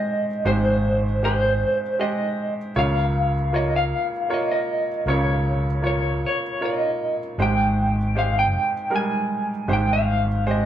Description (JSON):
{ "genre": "acoustic folk-pop ballad", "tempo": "78 BPM", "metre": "3/4", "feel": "straight", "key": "Ab major", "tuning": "A4 = 440 Hz", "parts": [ { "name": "electric guitar through a small old amp", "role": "melody", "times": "0.0-10.7 s", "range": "C5 to Ab5", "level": "-24 LUFS", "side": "equal", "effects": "tremolo" }, { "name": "bright upright piano", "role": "accompaniment", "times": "0.0-10.7 s", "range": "Ab1 to Db5", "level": "-25 LUFS", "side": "right 1 dB", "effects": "none" }, { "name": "fingered electric bass", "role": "bass", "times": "0.5-10.7 s", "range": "Ab1 to Db2", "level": "-23 LUFS", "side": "equal", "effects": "none" } ], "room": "moderate large studio reverb, RT60 0.8 s", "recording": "band playing live in one room, lossy compression artefacts", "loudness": "-20 LUFS", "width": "side -10 dB against mid", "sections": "0.0-10.7 A section", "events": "none", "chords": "0.0 Abmaj7; 2.8 Db6; 7.4 Abmaj7", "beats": "| 0.46 1.22 1.99 | 2.75 3.52 4.28 | 5.05 5.83 6.60 | 7.37 8.15 8.91 | 9.68 10.45" }